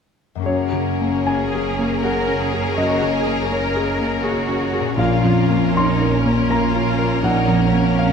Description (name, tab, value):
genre	cinematic, emotional film score for orchestra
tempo	81 BPM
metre	3/4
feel	rubato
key	Gb major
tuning	A4 = 440 Hz
part	concert harp	arpeggios	0.4-8.1 s	Gb2 to Bb4	-26 LUFS	left 8 dB	none
part	warm studio violin section	second line	0.5-8.1 s	Ab4 to Bb4	-26 LUFS	left 5 dB	none
part	rich studio viola section	accompaniment	0.5-8.1 s	Bb3 to Db4	-25 LUFS	equal	none
part	warm concert grand piano	accompaniment	0.5-8.1 s	Bb1 to C6	-20 LUFS	equal	none
part	rich studio double bass section	bass	0.5-8.1 s	Gb1 to Bb1	-26 LUFS	right 5 dB	none
part	rich studio cello section	bass	1.3-8.1 s	Db4 to Bb4	-25 LUFS	right 3 dB	none
room	moderate scoring stage reverb, RT60 2.2 s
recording	none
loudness	-16 LUFS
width	side -6 dB against mid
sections	0.5-8.1 A section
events	none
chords	0.5 Gbadd9; 5.0 Bbm